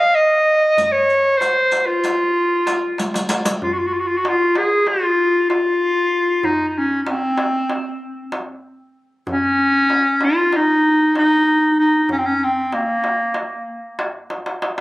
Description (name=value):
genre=Turkish makam ensemble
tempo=191 BPM (eighths)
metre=9/8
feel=straight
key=F makam kurdi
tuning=A4 = 439 Hz
part: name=breathy clarinet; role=melody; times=0.0-13.7 s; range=Bb3 to F5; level=-15 LUFS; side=equal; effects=plate reverb, analog delay
part: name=darbuka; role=percussion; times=0.8-14.8 s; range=none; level=-26 LUFS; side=equal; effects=none
part: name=riq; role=percussion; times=0.8-3.6 s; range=none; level=-25 LUFS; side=equal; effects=none
room=moderate studio reverb, RT60 0.6 s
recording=recorded on a phone in the room, club reverb, compression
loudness=-15 LUFS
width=side -19 dB against mid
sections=0.0-3.6 A section; 3.6-14.8 B section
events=drum fill 3.0-3.6, 14.3-14.8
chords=none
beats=0.16 0.47 | 0.79 1.10 1.41 1.73 2.04 2.35 2.67 2.98 3.29 | 3.61 3.92 4.23 4.55 4.86 5.18 5.49 5.80 6.12 | 6.43 6.75 7.06 7.38 7.69 8.00 8.32 8.63 8.95 | 9.26 9.58 9.89 10.21 10.52 10.83 11.15 11.46 11.78 | 12.09 12.41 12.72 13.04 13.35 13.66 13.98 14.29 14.61